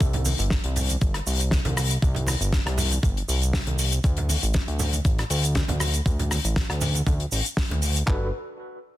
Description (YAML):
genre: nu-disco, nu disco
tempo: 119 BPM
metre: 4/4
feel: straight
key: G major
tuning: A4 = 440 Hz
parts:
  - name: fat analog bass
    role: bass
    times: 0.0-8.3 s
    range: G1 to D2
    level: -25 LUFS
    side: equal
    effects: tube saturation
  - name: clean 12-bit digital drum machine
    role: drums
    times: 0.0-8.2 s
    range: handclaps, kick drum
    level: -23 LUFS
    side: equal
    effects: overdrive, studio reverb
  - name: damped 70s drum kit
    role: drums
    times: 0.0-8.1 s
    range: hi-hat, rim click, shaker, snare drum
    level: -27 LUFS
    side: left 2 dB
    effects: studio reverb
  - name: congas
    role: percussion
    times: 0.1-7.8 s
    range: none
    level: -32 LUFS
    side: right 2 dB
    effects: none
  - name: overdriven tine electric piano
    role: accompaniment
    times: 8.1-8.3 s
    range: D4 to B4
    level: -35 LUFS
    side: equal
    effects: fast tremolo, vintage 12-bit sampler grit, tape echo
room: small room ambience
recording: dense, heavily limited modern master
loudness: -21 LUFS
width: side -15 dB against mid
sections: 0.0-8.1 A section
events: none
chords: 0.0 Gsus4; 4.0 D5; 8.1 Gmaj7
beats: | 0.01 0.51 1.01 1.52 | 2.02 2.53 3.03 3.54 | 4.04 4.54 5.05 5.55 | 6.06 6.56 7.07 7.57 | 8.07